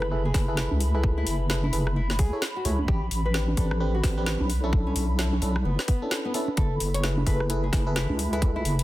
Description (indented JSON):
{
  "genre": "UK garage, two-step garage",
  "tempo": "130 BPM",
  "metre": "4/4",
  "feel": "swing 60% on 16ths",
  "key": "F# minor",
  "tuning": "A4 = 440 Hz",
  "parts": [
    { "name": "nylon-string guitar", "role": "melody", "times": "0.0-8.7 s", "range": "B3 to C#5", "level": "-35 LUFS", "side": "left 2 dB", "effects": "digital delay" },
    { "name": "airy breathy pad", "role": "sustained chords", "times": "0.0-8.8 s", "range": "B5", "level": "-38 LUFS", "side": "right 2 dB", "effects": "chorus, sidechain pumping" },
    { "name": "FM electric piano", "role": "stabs", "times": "0.0-8.8 s", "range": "C4 to C#5", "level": "-32 LUFS", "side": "equal", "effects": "chorus, low-pass filter, digital delay" },
    { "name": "deep soft wobble bass", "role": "bass", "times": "0.0-8.8 s", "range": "F#1 to C#2", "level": "-26 LUFS", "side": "equal", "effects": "chorus" },
    { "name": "garage drum kit", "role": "drums", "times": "0.0-8.8 s", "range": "congas, hi-hat, rim click, snare drum", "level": "-31 LUFS", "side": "equal", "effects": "none" },
    { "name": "electronic kick drum", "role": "drums", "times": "0.3-8.5 s", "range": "none", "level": "-24 LUFS", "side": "equal", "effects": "none" }
  ],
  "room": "digital ambience",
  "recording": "dense, heavily limited modern master",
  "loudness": "-23 LUFS",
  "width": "side -16 dB against mid",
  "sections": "0.0-8.8 A section",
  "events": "filter sweep on FM electric piano 0.0-8.8",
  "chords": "0.0 F#m11; 2.9 Am11; 4.5 Bm11; 6.6 F#m11"
}